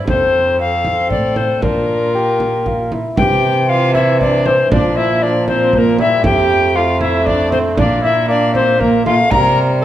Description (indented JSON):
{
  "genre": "classical, renaissance-style consort dance",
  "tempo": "117 BPM",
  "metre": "3/4",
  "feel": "straight",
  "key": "unclear",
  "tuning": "A4 = 440 Hz",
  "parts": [
    { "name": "warm viola", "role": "second line", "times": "0.0-9.8 s", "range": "Bb3 to Bb4", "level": "-20 LUFS", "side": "right 4 dB", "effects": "none" },
    { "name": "rich cello", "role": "bass", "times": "0.0-9.8 s", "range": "F2 to C3", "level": "-19 LUFS", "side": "right 2 dB", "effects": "none" },
    { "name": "alto recorder", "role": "melody", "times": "0.1-9.8 s", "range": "Bb4 to Bb5", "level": "-16 LUFS", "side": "left 3 dB", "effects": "none" },
    { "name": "mellow bassoon", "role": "accompaniment", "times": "0.1-9.8 s", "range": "E3 to G4", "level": "-20 LUFS", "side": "left 1 dB", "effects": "none" },
    { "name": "frame drum", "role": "percussion", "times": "0.1-9.6 s", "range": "none", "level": "-22 LUFS", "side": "right 2 dB", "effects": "none" }
  ],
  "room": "wet recital hall reverb, RT60 1.4 s",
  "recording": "none",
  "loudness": "-12 LUFS",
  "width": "side -12 dB against mid",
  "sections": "0.0-3.2 A section; 3.2-9.8 A section",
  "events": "none",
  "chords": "0.1 F; 1.6 Bb; 3.2 C; 4.7 Bb5; 6.3 F; 7.8 Bbmaj9#11; 9.3 C5",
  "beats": "| 0.08 0.59 1.11 | 1.63 2.15 2.66 | 3.18 3.70 4.21 | 4.72 5.23 5.74 | 6.25 6.76 7.28 | 7.79 8.29 8.80 | 9.31 9.82"
}